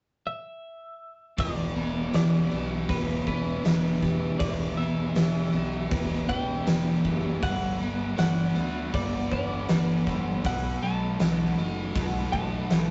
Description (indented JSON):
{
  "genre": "rock, shoegaze and dream pop",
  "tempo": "79 BPM",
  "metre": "4/4",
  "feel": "straight",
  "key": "E minor",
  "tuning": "A4 = 440 Hz",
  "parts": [
    { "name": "twelve-string electric guitar", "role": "melody", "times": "0.3-12.9 s", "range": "B4 to A5", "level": "-38 LUFS", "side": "equal", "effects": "none" },
    { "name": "ethereal airy pad", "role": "sustained chords", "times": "2.4-12.9 s", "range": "A4 to B5", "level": "-44 LUFS", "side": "equal", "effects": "ensemble chorus, built-in reverb" },
    { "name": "picked twelve-string acoustic guitar", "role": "arpeggios", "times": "1.4-12.9 s", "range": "F#3 to G4", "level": "-42 LUFS", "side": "equal", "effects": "none" },
    { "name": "biting overdriven guitar", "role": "riff", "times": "1.4-12.9 s", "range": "B2 to G4", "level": "-36 LUFS", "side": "equal", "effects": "none" },
    { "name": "raw garage guitar", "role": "riff", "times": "1.4-12.9 s", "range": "B2 to D#4", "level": "-36 LUFS", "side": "equal", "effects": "overdrive" },
    { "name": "fuzz picked electric bass", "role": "bass", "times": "1.4-12.9 s", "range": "E1 to D2", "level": "-36 LUFS", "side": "equal", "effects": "overdrive" },
    { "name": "huge arena drum kit", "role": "drums", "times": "1.4-12.9 s", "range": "hi-hat, kick drum, snare drum", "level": "-29 LUFS", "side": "equal", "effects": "none" }
  ],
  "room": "wet small room reverb, RT60 0.5 s",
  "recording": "rough rehearsal-room recording, tube saturation, nothing above 7.9 kHz",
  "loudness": "-27 LUFS",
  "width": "mono",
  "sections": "0.0-1.4 A section; 1.4-12.9 B section",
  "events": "none",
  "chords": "0.0 N.C.; 1.4 Em7; 7.4 Gmaj7; 10.4 B7"
}